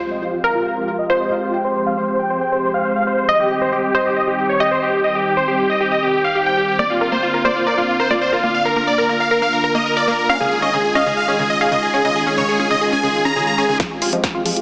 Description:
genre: uplifting trance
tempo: 137 BPM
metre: 4/4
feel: straight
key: F minor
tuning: A4 = 440 Hz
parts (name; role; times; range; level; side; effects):
- supersaw chords; melody; 0.0-14.6 s; F4 to Bb5; -17 LUFS; equal; cassette tape, sidechain pumping, low-pass filter, digital delay
- glassy wavetable pluck; second line; 0.0-12.0 s; Bb4 to F5; -20 LUFS; equal; chorus, cassette tape, tape echo
- sub drop; sound effects; 0.0-1.5 s; none; -44 LUFS; equal; none
- tight sequenced synth; arpeggios; 6.8-14.5 s; Db3 to Bb4; -23 LUFS; equal; chorus, cassette tape, sidechain pumping, digital delay
- electronic kick drum; drums; 13.8-14.3 s; none; -23 LUFS; equal; none
- punchy analog drum machine; drums; 13.8-14.6 s; hi-hat, snare drum; -23 LUFS; equal; sidechain pumping on perc, high-pass filter on perc, low-pass filter on perc, sidechain pumping on hats, high-pass filter on hats, low-pass filter on hats, high-pass filter on snare, low-pass filter on snare
room: wet lush hall reverb, RT60 1.6 s, digital ambience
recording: heavily compressed radio sound, small speaker sound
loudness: -15 LUFS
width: side -27 dB against mid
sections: 0.0-13.8 A section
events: impact 0.0-1.5; filter sweep on supersaw synth 0.0-13.8; drum fill 13.8-14.6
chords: 0.0 Fmadd9; 3.3 Cm; 6.8 Bbadd9; 10.3 Dbadd9; 13.8 Fmadd9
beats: 0.22 0.66 1.10 | 1.54 1.97 2.41 2.85 | 3.29 3.73 4.16 4.60 | 5.04 5.48 5.92 6.35 | 6.79 7.23 7.67 8.11 | 8.54 8.98 9.42 9.86 | 10.29 10.73 11.17 11.61 | 12.05 12.48 12.92 13.36 | 13.80 14.24

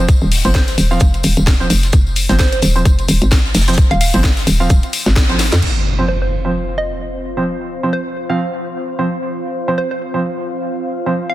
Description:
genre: bass house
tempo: 130 BPM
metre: 4/4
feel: swing 57% on 16ths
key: F minor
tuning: A4 = 439 Hz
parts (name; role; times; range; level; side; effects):
- dark concert grand piano; stabs; 0.0-11.1 s; F3 to F5; -21 LUFS; right 2 dB; sidechain pumping, dub echo
- hollow knocking FM bass; bass; 0.0-5.6 s; Eb1 to F2; -15 LUFS; equal; tube saturation, sidechain pumping
- electronic kick drum; drums; 0.1-5.3 s; none; -12 LUFS; equal; none
- garage drum kit; drums; 0.1-5.7 s; crash cymbal, hi-hat, snare drum; -21 LUFS; left 2 dB; none
- gated 80s drum kit; drums; 0.1-5.6 s; hi-hat, shaker, snare drum; -26 LUFS; equal; sidechain pumping on hats, high-pass filter on hats, high-pass filter on snare, sidechain pumping on perc, high-pass filter on perc, high-pass filter on room
- tambourine; percussion; 0.1-5.6 s; none; -27 LUFS; left 5 dB; none
- hollow square pluck; melody; 0.5-11.3 s; C5 to F5; -25 LUFS; right 2 dB; chorus, dub echo
- impact; sound effects; 5.6-7.5 s; none; -20 LUFS; equal; none
- airy breathy pad; texture; 5.6-11.3 s; C4 to F5; -24 LUFS; equal; chorus, sidechain pumping
room: light reverb, studio ambience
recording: dense, heavily limited modern master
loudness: -13 LUFS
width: side -15 dB against mid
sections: 0.0-5.6 A section; 5.6-11.3 B section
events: drop 0.0-5.6; band accent 5.2; drum fill 5.4; impact 5.6-7.5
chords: 0.0 F5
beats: | 0.09 0.55 1.01 1.47 | 1.93 2.39 2.85 3.32 | 3.78 4.24 4.70 5.16 | 5.62 6.09 6.55 7.01 | 7.47 7.93 8.39 8.86 | 9.32 9.78 10.24 10.70 | 11.16

